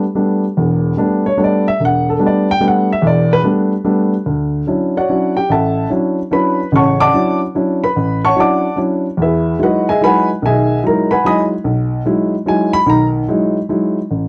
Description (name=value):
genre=jazz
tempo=146 BPM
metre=3/4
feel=swing 65% on 8ths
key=D major from 4.3 s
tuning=A4 = 440 Hz
part: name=warm upright piano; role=solo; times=0.0-14.3 s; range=E1 to D#6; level=-15 LUFS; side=equal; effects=none
room=light reverb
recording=dark, warm production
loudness=-15 LUFS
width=mono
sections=0.0-4.3 A section; 4.3-14.1 A section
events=none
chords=0.0 A9sus4; 4.3 Dmaj9; 9.2 Emaj9